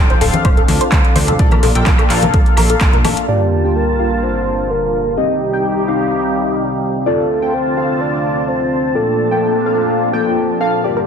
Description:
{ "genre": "progressive house", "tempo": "127 BPM", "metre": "4/4", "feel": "straight", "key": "Bb major", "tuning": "A4 = 440 Hz", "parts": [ { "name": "filtered supersaw swell", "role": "sustained chords", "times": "0.0-11.1 s", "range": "C2 to A5", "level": "-20 LUFS", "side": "right 2 dB", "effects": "sidechain pumping" }, { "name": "chorused polysynth", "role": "stabs", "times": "0.0-11.1 s", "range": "Bb3 to G5", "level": "-18 LUFS", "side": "left 2 dB", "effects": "phaser, sidechain pumping, ping-pong delay" }, { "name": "plucky analog bass", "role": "bass", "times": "0.0-3.1 s", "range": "D1 to D2", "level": "-19 LUFS", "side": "equal", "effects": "sidechain pumping" }, { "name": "tight sequenced synth", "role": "arpeggios", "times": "0.1-3.1, 11.0 s", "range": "A4 to C5", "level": "-21 LUFS", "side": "left 1 dB", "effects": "chorus, sidechain pumping, ping-pong delay" }, { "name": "deep house drum kit", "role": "drums", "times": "0.1-3.3 s", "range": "handclaps, hi-hat", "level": "-21 LUFS", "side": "equal", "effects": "overdrive, sidechain pumping on hats, studio reverb" }, { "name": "woodblock and congas", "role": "percussion", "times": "0.2-3.1 s", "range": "none", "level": "-22 LUFS", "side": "left 3 dB", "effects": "sidechain pumping on perc" }, { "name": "electronic kick drum", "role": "drums", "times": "0.4-2.9 s", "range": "none", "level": "-13 LUFS", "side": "equal", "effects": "overdrive, studio reverb" }, { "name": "soft octave-layered synth lead", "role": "melody", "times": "3.3-11.1 s", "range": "G4 to D5", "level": "-20 LUFS", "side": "equal", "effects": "chorus, sidechain pumping, ping-pong delay" }, { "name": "sub drop", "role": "sound effects", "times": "3.3-5.2 s", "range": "none", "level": "-20 LUFS", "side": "equal", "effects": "none" } ], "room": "moderate digital room reverb, RT60 1.1 s, digital ambience", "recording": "dense, heavily limited modern master", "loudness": "-12 LUFS", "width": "side -7 dB against mid", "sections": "0.0-3.3 A section; 3.3-11.1 B section", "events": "filter sweep on supersaw synth 0.0-3.3; impact 3.3-5.2; filter sweep on analog polysynth 3.3-11.1", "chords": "0.0 Dm7; 1.4 Bbmaj7; 3.3 Gm7; 5.2 Cm; 7.1 Dm7; 9.0 Bbmaj7" }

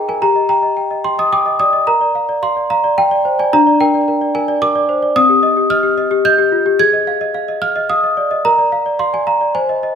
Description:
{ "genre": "classical, lullaby for celesta", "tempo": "109 BPM", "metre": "3/4", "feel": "straight", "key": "unclear", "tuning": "A4 = 442 Hz", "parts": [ { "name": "worn celesta", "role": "solo", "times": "0.0-9.9 s", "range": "C4 to Ab6", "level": "-12 LUFS", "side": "equal", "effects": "none" } ], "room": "moderate recital hall reverb, RT60 1.4 s", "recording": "recorded in a church or concert hall", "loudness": "-12 LUFS", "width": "side -7 dB against mid", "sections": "0.0-9.9 A section", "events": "none", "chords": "0.2 Eb/G; 1.9 Bb; 3.5 Bb/D; 5.2 Cm; 6.8 Fm7/Ab; 8.4 Bb" }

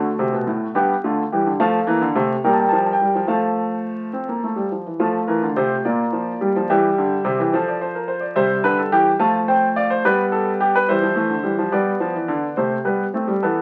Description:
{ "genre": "classical, baroque-style 4-part fugue for grand piano", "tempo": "71 BPM (dotted quarters)", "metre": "6/8", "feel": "straight", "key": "F major", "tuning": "A4 = 442 Hz", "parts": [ { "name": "clear grand piano", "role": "solo", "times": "0.0-13.6 s", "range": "G2 to A5", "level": "-20 LUFS", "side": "equal", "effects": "none" } ], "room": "moderate studio reverb, RT60 0.9 s", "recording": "very old 78 rpm record, vinyl crackle", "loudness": "-20 LUFS", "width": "mono", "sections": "0.0-5.0 A section; 5.0-11.7 B section; 11.7-13.6 A section", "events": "none", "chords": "0.0 D7; 0.8 G; 1.6 F; 2.5 Gm9/Bb; 3.3 F; 5.8 Gm7/Bb; 6.7 C; 7.5 F; 8.4 C; 9.2 Dm7/F; 10.1 G; 10.9 C/E; 11.7 G; 12.6 Am9/C" }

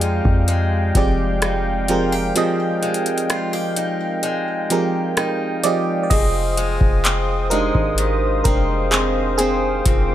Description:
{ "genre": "contemporary R&B", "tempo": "64 BPM", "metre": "4/4", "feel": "straight", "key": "unclear", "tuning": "A4 = 440 Hz", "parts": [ { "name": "FM electric piano", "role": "accompaniment", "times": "0.0-10.1 s", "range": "F3 to G5", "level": "-21 LUFS", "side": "right 3 dB", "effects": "chorus" }, { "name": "warm analog pad", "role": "sustained chords", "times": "0.0-10.1 s", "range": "Ab3 to Eb6", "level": "-25 LUFS", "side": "left 2 dB", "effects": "chorus" }, { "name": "picked acoustic archtop guitar", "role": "arpeggios", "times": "0.0-10.1 s", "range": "F2 to G4", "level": "-26 LUFS", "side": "left 3 dB", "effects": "ping-pong delay" }, { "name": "warm 808-style bass", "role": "bass", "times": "0.0-10.1 s", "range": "F1 to F2", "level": "-22 LUFS", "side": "equal", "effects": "none" }, { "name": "booming analog drum machine", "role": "drums", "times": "0.0-10.1 s", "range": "crash cymbal, handclaps, hi-hat, kick drum, rim click", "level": "-20 LUFS", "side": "equal", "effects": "none" } ], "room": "digital ambience", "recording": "none", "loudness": "-17 LUFS", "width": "side -12 dB against mid", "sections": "0.0-6.1 A section; 6.1-10.1 B section", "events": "break 2.4-6.1; FM electric piano fill 4.7-6.1; FM electric piano solo 6.1-10.1", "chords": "0.0 Fm9; 6.1 Fm7" }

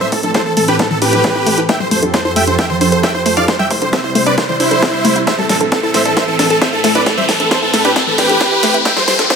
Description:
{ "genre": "uplifting trance", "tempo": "134 BPM", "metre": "4/4", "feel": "straight", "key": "A minor", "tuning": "A4 = 439 Hz", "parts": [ { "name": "big supersaw lead", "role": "melody", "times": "0.0-9.4 s", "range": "E4 to G5", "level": "-15 LUFS", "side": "right 1 dB", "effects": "sidechain pumping, dub echo" }, { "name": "lush unison pad", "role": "sustained chords", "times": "0.0-9.4 s", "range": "F2 to C5", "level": "-20 LUFS", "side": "right 1 dB", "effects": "chorus, sidechain pumping" }, { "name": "wide unison pluck", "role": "arpeggios", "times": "0.0-9.4 s", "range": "E3 to A4", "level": "-20 LUFS", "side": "left 2 dB", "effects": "sidechain pumping, digital delay" }, { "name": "riser", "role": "sound effects", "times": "2.7-9.4 s", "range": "none", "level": "-21 LUFS", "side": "equal", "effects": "none" }, { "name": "big-room dance drum kit", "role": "drums", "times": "0.1-9.4 s", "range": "congas, hi-hat, snare drum", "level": "-19 LUFS", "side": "equal", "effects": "high-pass filter on snare, studio reverb, sidechain pumping on hats, high-pass filter on hats, sidechain pumping on perc, high-pass filter on perc" }, { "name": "electronic kick drum", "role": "drums", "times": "0.1-9.4 s", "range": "none", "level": "-20 LUFS", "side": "equal", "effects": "high-pass filter on kick, studio reverb, high-pass filter on room" } ], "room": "moderate lush hall reverb, RT60 2.1 s", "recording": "high-pass filter", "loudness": "-11 LUFS", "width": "side -6 dB against mid", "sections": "0.0-9.4 A section", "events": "build-up 0.0-9.4; drum fill 0.0-9.4; filter sweep on synth arpeggio sound 0.0-9.4; filter sweep 0.0-9.4; riser 2.7-9.4", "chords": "0.0 Am; 1.7 Fadd9; 3.5 C; 5.3 Am; 8.9 Fadd9" }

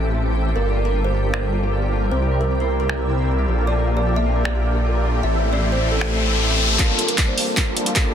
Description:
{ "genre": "future bass", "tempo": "154 BPM", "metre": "4/4", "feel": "half-time", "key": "G dorian", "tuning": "A4 = 440 Hz", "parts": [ { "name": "overdriven tine electric piano", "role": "accompaniment", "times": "0.0-0.6, 6.8-8.1 s", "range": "G3 to G5", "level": "-30 LUFS", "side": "left 3 dB", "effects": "phaser, sidechain pumping, ping-pong delay" }, { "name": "shimmering ambient pad", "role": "sustained chords", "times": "0.0-8.1 s", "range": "D3 to A4", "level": "-32 LUFS", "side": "equal", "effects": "chorus, built-in reverb, sidechain pumping" }, { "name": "supersaw chords", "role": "riff", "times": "0.0-8.1 s", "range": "G3 to E5", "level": "-26 LUFS", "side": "equal", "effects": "ensemble chorus, vintage 12-bit sampler grit, sidechain pumping, low-pass filter" }, { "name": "wide detuned saw bass", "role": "bass", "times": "0.0-8.1 s", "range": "G1 to C2", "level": "-21 LUFS", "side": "equal", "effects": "chorus, sidechain pumping, high-pass filter" }, { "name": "kalimba", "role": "melody", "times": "0.6-7.9 s", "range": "A4 to E5", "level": "-27 LUFS", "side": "right 3 dB", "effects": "sidechain pumping, ping-pong delay" }, { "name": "Celtic harp", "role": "arpeggios", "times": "0.6-8.1 s", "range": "E4 to A5", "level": "-33 LUFS", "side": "left 4 dB", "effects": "sidechain pumping, ping-pong delay" }, { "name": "dubstep drum kit", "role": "drums", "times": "1.3-8.0 s", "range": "finger snaps, handclaps, hi-hat", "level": "-26 LUFS", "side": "equal", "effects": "overdrive, low-pass filter on cymbals, soft clipping on snare, low-pass filter on snare, low-pass filter on hats, low-pass filter on room" }, { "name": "riser", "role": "sound effects", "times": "4.9-8.1 s", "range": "none", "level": "-24 LUFS", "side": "left 3 dB", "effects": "none" }, { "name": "electronic kick drum", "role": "drums", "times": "6.8-8.0 s", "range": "none", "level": "-20 LUFS", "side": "equal", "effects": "none" } ], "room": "digital ambience", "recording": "dense, heavily limited modern master", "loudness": "-17 LUFS", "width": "side -8 dB against mid", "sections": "0.0-6.8 A section; 6.8-8.1 B section", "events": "riser 4.9-6.8, 6.8-8.1; build-up 6.8-8.1; drum fill 6.8-8.1", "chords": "0.0 Am7; 0.6 Gm9; 2.1 C9; 3.5 Gm9/Bb; 5.2 Am7; 6.8 Gm9" }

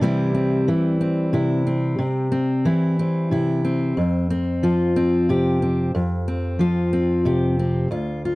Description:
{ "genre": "folk", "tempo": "61 BPM (dotted quarters)", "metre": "6/8", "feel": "straight", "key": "unclear", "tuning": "A4 = 440 Hz", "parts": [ { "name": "fingerpicked steel-string acoustic guitar", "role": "solo", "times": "0.0-8.3 s", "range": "D2 to G4", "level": "-18 LUFS", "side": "equal", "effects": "none" } ], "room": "light reverb", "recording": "dry, close 1970s-style studio recording", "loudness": "-18 LUFS", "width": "side -21 dB against mid", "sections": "0.0-7.9 A section", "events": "none", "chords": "0.0 C; 4.0 F5" }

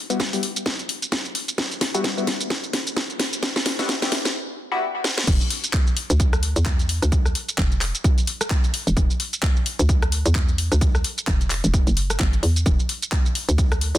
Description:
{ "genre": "bass house", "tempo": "130 BPM", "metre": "4/4", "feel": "swing 58% on 16ths", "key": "E minor", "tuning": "A4 = 441 Hz", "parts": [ { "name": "band-passed chord stab", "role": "stabs", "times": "0.1-4.8 s", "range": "G3 to G4", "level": "-27 LUFS", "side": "left 3 dB", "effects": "chorus, phaser, sidechain pumping, digital delay" }, { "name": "garage drum kit", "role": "drums", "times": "0.1-14.0 s", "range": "crash cymbal, handclaps, hi-hat, rim click, shaker, snare drum", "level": "-24 LUFS", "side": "equal", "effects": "soft clipping on snare" }, { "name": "electronic kick drum", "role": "drums", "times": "0.2-13.7 s", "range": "none", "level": "-21 LUFS", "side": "equal", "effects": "overdrive, high-pass filter on kick, high-pass filter on room" }, { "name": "hollow knocking FM bass", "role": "bass", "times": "5.3-14.0 s", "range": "E1 to E2", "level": "-21 LUFS", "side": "equal", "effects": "tube saturation, sidechain pumping" } ], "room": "little or no reverb", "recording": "dense, heavily limited modern master, high-pass filter", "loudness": "-19 LUFS", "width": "side -14 dB against mid", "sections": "0.0-5.3 A section; 5.3-14.0 B section", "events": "build-up 0.0-5.3; drum fill 0.0-4.4, 5.0; filter sweep on synth stab 0.0-5.3; break 4.4-5.3; drop 5.3-14.0", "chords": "0.0 Emadd9; 5.3 N.C." }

